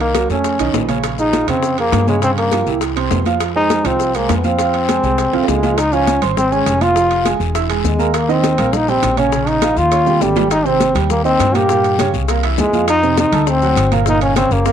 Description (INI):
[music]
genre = Afro-Cuban jazz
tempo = 203 BPM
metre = 4/4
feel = straight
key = F minor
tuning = A4 = 439 Hz
[part]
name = clear trombone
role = melody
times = 0.0-14.7 s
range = G3 to G4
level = -16 LUFS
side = left 1 dB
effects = none
[part]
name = warm grand piano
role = accompaniment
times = 0.0-14.7 s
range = Bb2 to E6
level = -20 LUFS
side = right 12 dB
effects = none
[part]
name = upright bass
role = bass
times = 0.0-14.7 s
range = E1 to G2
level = -20 LUFS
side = left 1 dB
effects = transformer saturation
[part]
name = congas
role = percussion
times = 0.0-14.7 s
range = none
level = -23 LUFS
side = left 2 dB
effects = none
[part]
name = timbales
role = percussion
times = 0.0-14.7 s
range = none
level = -26 LUFS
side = right 14 dB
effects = none
[part]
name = bongos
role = percussion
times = 0.1-14.7 s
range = none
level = -26 LUFS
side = left 16 dB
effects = none
[part]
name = maracas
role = percussion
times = 0.1-14.7 s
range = none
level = -33 LUFS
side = left 20 dB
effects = none
[part]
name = guiro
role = percussion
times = 0.2-14.7 s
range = none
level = -32 LUFS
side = left 18 dB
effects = none
[sound]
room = light reverb, small room ambience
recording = 1960s-style stereo with parts hard left and right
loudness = -13 LUFS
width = side -9 dB against mid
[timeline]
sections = 0.0-5.8 A section; 5.8-14.7 B section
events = drum fill 5.3-5.8, 10.1-10.5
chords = 0.4 Faug7; 1.0 Bbm9; 2.2 Gm7b5; 2.8 C; 3.4 Fm; 5.8 Dbmaj7; 7.0 Fm; 7.6 E; 8.1 Eb6; 9.3 Bbm; 9.9 Eb7; 10.5 Abmaj7; 11.7 Gdim; 12.3 Caug7; 12.9 F5; 13.5 D7b13; 14.1 Gdim